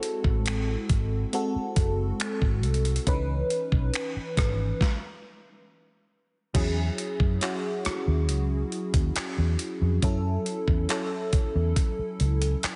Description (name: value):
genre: contemporary R&B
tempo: 69 BPM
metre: 4/4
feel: straight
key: E major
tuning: A4 = 439 Hz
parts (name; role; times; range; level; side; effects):
- FM electric piano with soft pad layer; accompaniment; 0.0-12.8 s; D#3 to B4; -33 LUFS; equal; chorus, phaser
- dusty soul sampler-style drum kit; drums; 0.0-12.8 s; crash cymbal, finger snaps, handclaps, hi-hat, kick drum, rim click, snare drum; -30 LUFS; equal; none
- vintage muted fingered electric bass; bass; 0.2-12.7 s; F#1 to F#2; -28 LUFS; equal; none
room: digital ambience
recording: heavily compressed radio sound, nothing above 10.7 kHz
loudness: -27 LUFS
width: mono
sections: 0.0-6.5 A section; 6.5-12.8 B section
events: stop 4.8-6.5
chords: 0.0 G#7b9; 3.1 C#m9; 6.5 E69; 10.0 F#m7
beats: 0.46 1.33 2.20 | 3.07 3.94 4.81 5.68 | 6.55 7.42 8.29 9.16 | 10.03 10.89 11.77 12.63